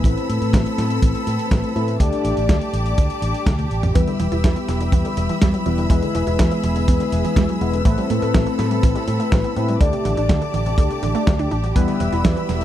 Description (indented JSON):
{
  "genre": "italo disco",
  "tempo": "123 BPM",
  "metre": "4/4",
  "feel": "straight",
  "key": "E minor",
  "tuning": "A4 = 441 Hz",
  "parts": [
    { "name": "rich studio string section", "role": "sustained chords", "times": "0.0-12.6 s", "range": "C4 to E6", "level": "-27 LUFS", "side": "right 1 dB", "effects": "none" },
    { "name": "chorused polysynth", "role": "stabs", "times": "0.0-12.6 s", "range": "G3 to D5", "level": "-23 LUFS", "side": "left 3 dB", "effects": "tape echo" },
    { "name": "fingered electric bass with an envelope filter", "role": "bass", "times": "0.0-12.6 s", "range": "E1 to A2", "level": "-23 LUFS", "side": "equal", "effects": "none" },
    { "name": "kick drum", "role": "drums", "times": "0.0-12.3 s", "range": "none", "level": "-18 LUFS", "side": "equal", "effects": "none" },
    { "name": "dusty soul sampler-style drum kit", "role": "drums", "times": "0.1-12.6 s", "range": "hi-hat, snare drum, toms", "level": "-24 LUFS", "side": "equal", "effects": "overdrive" },
    { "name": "analog pluck", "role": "arpeggios", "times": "4.0-12.6 s", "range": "E2 to A4", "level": "-26 LUFS", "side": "right 4 dB", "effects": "chorus, tape echo" }
  ],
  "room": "small room reverb",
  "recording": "dry, close 1970s-style studio recording",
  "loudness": "-17 LUFS",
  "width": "side -12 dB against mid",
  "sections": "0.0-12.6 A section",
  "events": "filter sweep on analog polysynth 0.0-12.6; drum fill 3.5-4.0",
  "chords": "0.1 Amadd9; 2.0 Dsus4; 4.0 Em; 5.9 E; 7.9 Amadd9; 9.8 Dsus4; 11.8 Em"
}